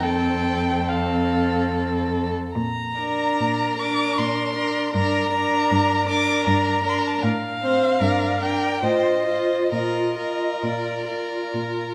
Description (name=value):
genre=classical, slow romantic movement for string quartet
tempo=64-79 BPM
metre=3/4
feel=rubato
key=Bb major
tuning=A4 = 440 Hz
part: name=warm violin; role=melody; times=0.0-11.5 s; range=D5 to D6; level=-27 LUFS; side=equal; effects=none
part: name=warm violin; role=second line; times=0.0-11.9 s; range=A4 to C5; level=-28 LUFS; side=equal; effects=none
part: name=dark viola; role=accompaniment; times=0.0-11.9 s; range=C4 to F4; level=-28 LUFS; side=equal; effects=none
part: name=rich cello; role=bass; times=0.0-11.9 s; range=F2 to Bb2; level=-30 LUFS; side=equal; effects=none
room=wet scoring stage reverb, RT60 2.0 s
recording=none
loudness=-22 LUFS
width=mono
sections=0.0-11.9 A section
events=none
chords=0.0 F; 2.6 Bb; 4.9 Gm; 7.2 F/A; 8.0 Gm; 8.8 F7/A; 9.7 Bb